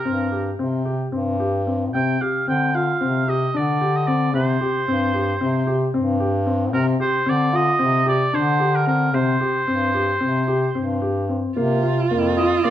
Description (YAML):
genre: contemporary instrumental, chamber music in an uneven meter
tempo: 224 BPM (eighths)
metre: 9/8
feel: straight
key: C minor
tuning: A4 = 440 Hz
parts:
  - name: warm oboe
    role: melody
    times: 0.0-12.7 s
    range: Bb4 to G5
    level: -23 LUFS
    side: right 2 dB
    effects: none
  - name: dark concert grand piano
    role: arpeggios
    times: 0.1-12.7 s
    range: Bb3 to G4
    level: -22 LUFS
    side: left 3 dB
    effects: none
  - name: warm bass clarinet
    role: bass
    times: 0.1-12.7 s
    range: F2 to D3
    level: -22 LUFS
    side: equal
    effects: none
  - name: dark cello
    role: second line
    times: 11.6-12.7 s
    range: F4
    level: -22 LUFS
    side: right 8 dB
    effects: none
room: moderate recital hall reverb, RT60 1.3 s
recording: none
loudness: -18 LUFS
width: side -11 dB against mid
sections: 0.0-11.6 A section; 11.6-12.7 B section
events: none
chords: 0.0 C5; 1.9 G7sus4/C; 4.3 C5; 6.7 Gsus4/C; 9.1 C5; 11.6 Bb5